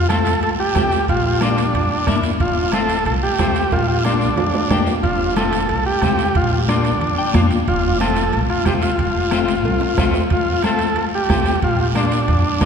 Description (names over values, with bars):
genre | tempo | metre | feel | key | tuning
latin, cumbia | 182 BPM | 4/4 | straight | F major | A4 = 440 Hz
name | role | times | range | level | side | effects
overdriven combo organ | melody | 0.0-12.7 s | D4 to A4 | -19 LUFS | equal | none
upright bass | bass | 0.0-12.7 s | F1 to F2 | -23 LUFS | equal | none
semi-hollow electric guitar | accompaniment | 0.1-12.7 s | A3 to G5 | -23 LUFS | left 5 dB | harmonic tremolo
bombo | percussion | 0.1-12.7 s | none | -24 LUFS | right 2 dB | none
congas | percussion | 0.1-12.7 s | none | -26 LUFS | left 2 dB | none
guiro | percussion | 0.1-12.7 s | none | -32 LUFS | right 6 dB | none
timbales | percussion | 0.1-12.7 s | none | -29 LUFS | right 4 dB | none
room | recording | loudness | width
wet cathedral reverb, RT60 4.2 s | recorded in a church or concert hall | -15 LUFS | side -6 dB against mid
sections
0.0-10.3 A section; 10.3-12.7 A section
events
drum fill 3.7-5.0, 9.6-10.3; clean electric guitar fill 7.0-7.7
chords
0.0 F; 1.1 Bb; 2.4 F; 3.7 Bb; 5.0 F; 6.4 Bb; 7.7 F; 11.6 Bb